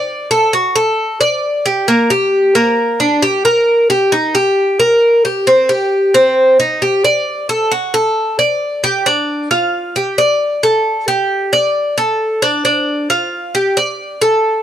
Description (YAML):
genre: latin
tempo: 134 BPM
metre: 4/4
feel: straight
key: unclear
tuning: A4 = 440 Hz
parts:
  - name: Cuban tres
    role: solo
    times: 0.0-14.6 s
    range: Bb3 to D5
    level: -12 LUFS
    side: equal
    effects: none
room: little or no reverb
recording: close, detailed microphones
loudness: -12 LUFS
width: side -10 dB against mid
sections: 0.0-9.1 A section; 9.1-14.6 B section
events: none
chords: none